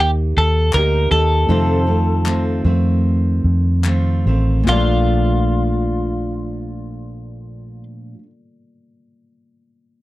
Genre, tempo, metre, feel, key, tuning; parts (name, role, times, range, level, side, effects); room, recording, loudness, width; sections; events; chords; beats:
acoustic pop; 71-82 BPM; 4/4; straight; Bb major; A4 = 440 Hz
twelve-string electric guitar; melody; 0.0-7.8 s; F4 to Bb4; -20 LUFS; left 1 dB
fingerpicked steel-string acoustic guitar; accompaniment; 0.0-8.3 s; F2 to G4; -23 LUFS; right 2 dB
reed electric piano; accompaniment; 0.0-10.0 s; A3 to D5; -26 LUFS; left 3 dB; phaser
vintage muted fingered electric bass; bass; 0.0-7.8 s; A1 to F2; -17 LUFS; equal
group handclap; percussion; 0.7-5.1 s; -28 LUFS; left 5 dB
little or no reverb; dry, close 1970s-style studio recording; -14 LUFS; side -17 dB against mid
0.0-4.7 A section; 4.7-8.1 B section
slowing down 0.0-4.7
0.0 Eb; 1.5 F7; 4.7 Bbmaj7
0.00 0.74 | 1.49 2.26 3.04 3.85 | 4.68 5.53 6.38 7.23